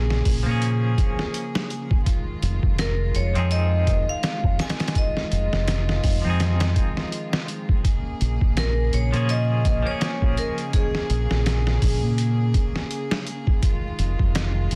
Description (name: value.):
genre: trip hop.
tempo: 83 BPM.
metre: 4/4.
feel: swing 57% on 16ths.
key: Bb minor.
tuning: A4 = 440 Hz.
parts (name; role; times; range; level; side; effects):
vibraphone with hard mallets; melody; 0.0-13.2 s; Ab4 to Ab5; -33 LUFS; equal; tape echo.
clean electric guitar; accompaniment; 0.0-11.1 s; F3 to Ab4; -34 LUFS; equal; tremolo, vintage 12-bit sampler grit, tape echo.
rich chamber string section; sustained chords; 0.0-14.8 s; Db3 to Ab4; -35 LUFS; equal; none.
deep dub fingered electric bass; bass; 0.0-14.8 s; F1 to Bb2; -24 LUFS; equal; none.
trip hop sampler-style drum kit; drums; 0.1-14.8 s; hi-hat, kick drum, snare drum; -26 LUFS; equal; soft clipping on snare.
room: digital ambience.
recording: dense, heavily limited modern master, vinyl crackle.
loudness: -23 LUFS.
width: mono.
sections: 0.0-14.8 A section.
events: none.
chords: 0.0 Bbm7; 2.1 Fm7; 7.8 Bbm7; 13.6 Fm7.